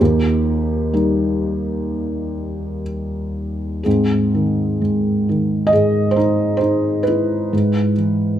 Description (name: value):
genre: classical, lyrical solo piano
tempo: 58-69 BPM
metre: 4/4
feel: rubato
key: Ab major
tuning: A4 = 440 Hz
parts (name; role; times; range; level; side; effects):
- felt-muted upright piano; solo; 0.0-8.4 s; Eb2 to Eb5; -16 LUFS; equal; none
room: light reverb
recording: close, detailed microphones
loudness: -16 LUFS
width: side -11 dB against mid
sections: 0.0-3.9 A section; 3.9-8.4 B section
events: none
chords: 0.0 Eb; 3.9 Ab; 7.5 E/G#